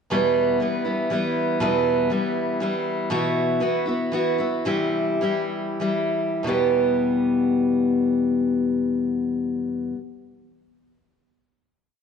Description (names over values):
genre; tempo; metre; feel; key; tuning
acoustic folk duo or small band; 90-120 BPM; 3/4; straight; E minor; A4 = 439 Hz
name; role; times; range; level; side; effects
picked steel-string acoustic guitar; solo; 0.1-10.0 s; E2 to G4; -20 LUFS; left 1 dB; none
room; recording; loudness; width
moderate scoring stage reverb, RT60 1.9 s; dark, warm production; -20 LUFS; side -6 dB against mid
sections
0.1-6.4 interlude; 6.4-10.4 final chord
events
slowing down 3.1-6.4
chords
0.1 Em; 3.1 Bsus4; 4.7 C; 6.4 Em